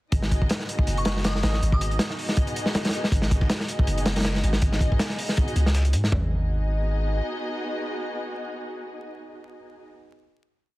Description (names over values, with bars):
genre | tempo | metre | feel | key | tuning
drum and bass, jungle | 160 BPM | 4/4 | swing 55% on 16ths | G# minor | A4 = 440 Hz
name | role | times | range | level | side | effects
dark studio string section | sustained chords | 0.1-9.9 s | B3 to D#5 | -32 LUFS | equal | none
long sustained 808-style bass | bass | 0.1-7.2 s | F#1 to G#2 | -24 LUFS | equal | none
crunchy breakbeat drum kit | drums | 0.1-6.2 s | hi-hat, kick drum, snare drum, toms | -23 LUFS | equal | none
glassy synth bell | melody | 1.0-2.1 s | C#6 to D#6 | -36 LUFS | left 1 dB | chorus, tremolo, vintage 12-bit sampler grit, dub echo
dusty soul sampler-style drum kit | drums | 3.1-6.0 s | hi-hat, snare drum | -38 LUFS | left 2 dB | high-pass filter on hats, high-pass filter on snare
room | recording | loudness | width
studio reverb | dense, heavily limited modern master, vinyl crackle | -22 LUFS | side -18 dB against mid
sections
0.1-6.1 drop; 6.1-9.1 final chord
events
drop 0.1-6.1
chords
0.1 G#m7